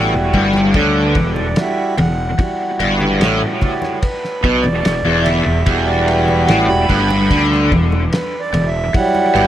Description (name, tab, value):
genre	psychedelic rock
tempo	73 BPM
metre	4/4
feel	straight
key	unclear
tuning	A4 = 440 Hz
part	pedal harmonium	sustained chords	0.0-9.5 s	F#3 to B5	-18 LUFS	right 2 dB	none
part	cranked stack guitar	riff	0.0-9.5 s	E2 to D3	-16 LUFS	left 1 dB	overdrive, rotary speaker, dub echo
part	fuzz fingered electric bass	bass	0.0-9.5 s	E1 to D2	-20 LUFS	equal	overdrive
part	cloth-damped thuddy drum kit	drums	0.3-9.5 s	kick drum, ride cymbal, snare drum	-22 LUFS	equal	none
part	congas	percussion	0.3-9.3 s	none	-30 LUFS	left 1 dB	none
room	moderate spring reverb, RT60 2.8 s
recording	echo-heavy mix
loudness	-13 LUFS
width	side -12 dB against mid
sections	0.0-9.5 A section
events	harmonium solo 0.0-9.5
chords	0.0 Emadd9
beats	0.75 1.57 | 2.39 3.21 4.03 4.85 | 5.67 6.49 7.31 8.13 | 8.94